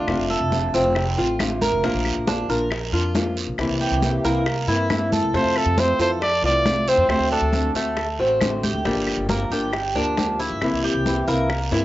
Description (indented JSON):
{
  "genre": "latin, Cuban son and guajira",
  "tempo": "137 BPM",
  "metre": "4/4",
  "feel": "straight",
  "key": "unclear",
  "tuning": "A4 = 440 Hz",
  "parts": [
    { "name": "clear trumpet", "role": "melody", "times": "0.0-0.3, 5.4-7.7 s", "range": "D4 to D5", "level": "-22 LUFS", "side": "right 1 dB", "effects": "cassette tape, plate reverb" },
    { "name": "flamenco guitar", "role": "accompaniment", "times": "0.0-11.8 s", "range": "C3 to G4", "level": "-24 LUFS", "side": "left 2 dB", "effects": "cassette tape" },
    { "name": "Cuban tres", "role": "arpeggios", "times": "0.0-11.8 s", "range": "G3 to Bb4", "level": "-24 LUFS", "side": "right 1 dB", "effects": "cassette tape, plate reverb" },
    { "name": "upright bass", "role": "bass", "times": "0.0-11.8 s", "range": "F1 to G2", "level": "-26 LUFS", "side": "equal", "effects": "none" },
    { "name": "bongos", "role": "percussion", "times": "0.1-11.8 s", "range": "none", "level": "-32 LUFS", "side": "left 4 dB", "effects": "none" },
    { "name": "claves", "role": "percussion", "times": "0.1-11.7 s", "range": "none", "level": "-31 LUFS", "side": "left 1 dB", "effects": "none" },
    { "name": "congas", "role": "percussion", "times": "0.1-11.8 s", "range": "none", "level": "-28 LUFS", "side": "equal", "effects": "none" },
    { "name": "guiro", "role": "percussion", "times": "0.1-11.8 s", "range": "none", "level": "-33 LUFS", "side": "right 6 dB", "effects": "none" }
  ],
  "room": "moderate small room reverb, RT60 0.5 s",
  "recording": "home recording on cassette, nothing above 7.8 kHz",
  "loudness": "-19 LUFS",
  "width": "side -15 dB against mid",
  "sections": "0.0-11.8 A section",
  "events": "none",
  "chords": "0.1 Dm7/F; 1.8 Bb; 3.6 C7; 5.3 Fmaj7; 7.1 D7; 8.9 Gm7; 10.6 C7",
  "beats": "| 0.08 0.52 0.96 1.40 | 1.83 2.27 2.71 3.15 | 3.59 4.03 4.46 4.90 | 5.34 5.78 6.22 6.66 | 7.09 7.54 7.97 8.41 | 8.85 9.29 9.73 10.18 | 10.62 11.06 11.50"
}